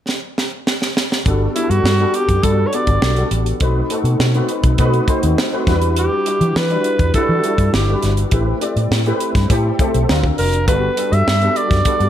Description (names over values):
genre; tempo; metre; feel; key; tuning
polished 1980s jazz-funk pop; 102 BPM; 4/4; straight; G major; A4 = 445 Hz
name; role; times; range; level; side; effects
tight funk drum kit; drums; 0.1-12.1 s; hi-hat, kick drum, snare drum; -19 LUFS; equal; none
warm concert grand piano; accompaniment; 1.3-12.1 s; F#3 to D5; -20 LUFS; left 1 dB; ensemble chorus
vintage muted fingered electric bass; bass; 1.3-12.1 s; E#1 to E3; -17 LUFS; equal; none
growling alto saxophone; melody; 1.6-12.1 s; E4 to E5; -19 LUFS; right 1 dB; none
room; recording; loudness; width
light reverb, studio reverb; none; -14 LUFS; side -10 dB against mid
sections
0.0-1.3 A section; 1.3-12.1 B section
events
drum fill 0.1-1.3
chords
0.0 N.C.; 1.3 Gmaj9; 3.6 B7b9; 5.7 Em9; 8.3 Am9; 10.1 D7alt; 10.7 Gmaj9